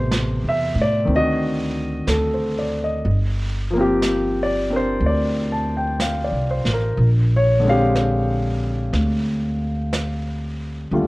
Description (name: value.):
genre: jazz ballad.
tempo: 61 BPM.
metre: 4/4.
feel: swing 69% on 8ths.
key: Bb major.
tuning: A4 = 439 Hz.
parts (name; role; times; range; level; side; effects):
warm baby grand piano; accompaniment; 0.0-11.1 s; B2 to A5; -21 LUFS; left 1 dB; none.
upright bass; bass; 0.0-11.1 s; G1 to A2; -21 LUFS; equal; none.
jazz brush drum kit; drums; 0.1-11.1 s; brushed snare drum, hi-hat, snare drum; -30 LUFS; right 1 dB; none.
room: light reverb.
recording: worn, warbling old tape, cassette tape, warbly pitch drift.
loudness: -18 LUFS.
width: side -20 dB against mid.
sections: 0.0-11.1 A section.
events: none.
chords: 0.0 Am9; 1.1 D7b9; 3.1 Gm11; 7.0 Bb13.